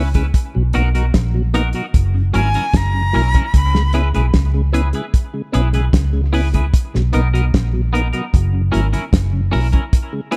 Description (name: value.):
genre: dub reggae.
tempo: 75 BPM.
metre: 4/4.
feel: straight.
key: unclear.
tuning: A4 = 440 Hz.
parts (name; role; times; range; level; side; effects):
mellow tonewheel organ; accompaniment; 0.0-10.4 s; F#2 to E4; -26 LUFS; equal; slow rotary speaker.
twangy electric guitar; accompaniment; 0.0-10.4 s; B3 to B4; -28 LUFS; equal; analog chorus, tape echo.
vintage muted fingered electric bass; bass; 0.0-9.7 s; F#1 to C#2; -19 LUFS; equal; none.
damped 70s drum kit; drums; 0.1-10.4 s; hi-hat, kick drum, snare drum; -18 LUFS; equal; none.
breathy bright jazz flute; melody; 2.4-3.9 s; G#5 to B5; -25 LUFS; equal; tape echo.
room: studio reverb.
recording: dark, warm production.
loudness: -17 LUFS.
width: mono.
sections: 0.0-10.4 A section.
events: break 9.9-10.4.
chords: 0.3 Bmaj7; 1.9 F#7; 3.5 C#m7; 6.7 Bmaj7; 8.3 F#7.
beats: | 0.34 1.14 1.94 2.74 | 3.54 4.34 5.14 5.94 | 6.74 7.53 8.33 9.13 | 9.93.